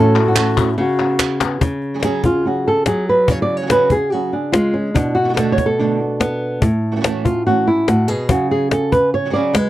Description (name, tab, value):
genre	flamenco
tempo	144 BPM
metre	4/4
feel	straight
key	unclear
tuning	A4 = 440 Hz
part	flamenco guitar	melody	0.0-9.7 s	A2 to D5	-16 LUFS	equal	none
part	mellow baroque flute	second line	0.0-1.4 s	F#4	-22 LUFS	left 4 dB	none
part	flamenco guitar	stabs	0.0-9.7 s	A2 to G#4	-23 LUFS	right 6 dB	none
part	palmas hand claps	percussion	0.2-1.6 s	none	-21 LUFS	left 2 dB	none
part	cajon	percussion	0.4-9.7 s	none	-18 LUFS	left 3 dB	none
room	moderate booth ambience, RT60 0.2 s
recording	dry, close 1970s-style studio recording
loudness	-14 LUFS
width	side -14 dB against mid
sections	0.0-1.6 A section; 1.6-9.7 B section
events	drum fill 1.4; nylon-string guitar solo 1.6-9.7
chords	0.0 A6; 0.8 C#7sus4; 1.6 C#sus4; 5.0 Bm7; 6.6 A6; 8.3 C#sus4